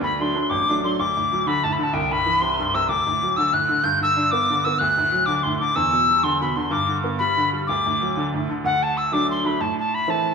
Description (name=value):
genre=celtic folk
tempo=125 BPM (dotted quarters)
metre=6/8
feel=straight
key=D mixolydian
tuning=A4 = 439 Hz
part: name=mellow wooden whistle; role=melody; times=0.0-10.3 s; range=F#5 to G6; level=-20 LUFS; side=left 2 dB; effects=none
part: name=bright upright piano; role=accompaniment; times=0.0-10.3 s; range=A1 to D4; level=-24 LUFS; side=right 2 dB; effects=none
room=wet stone room reverb, RT60 1.4 s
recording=band playing live in one room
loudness=-19 LUFS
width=side -5 dB against mid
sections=1.0-8.6 A section; 8.6-10.3 B section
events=none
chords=0.0 D; 1.9 C; 2.9 D; 3.8 G; 4.8 D; 5.8 Em7; 6.7 G; 7.7 D; 9.6 Am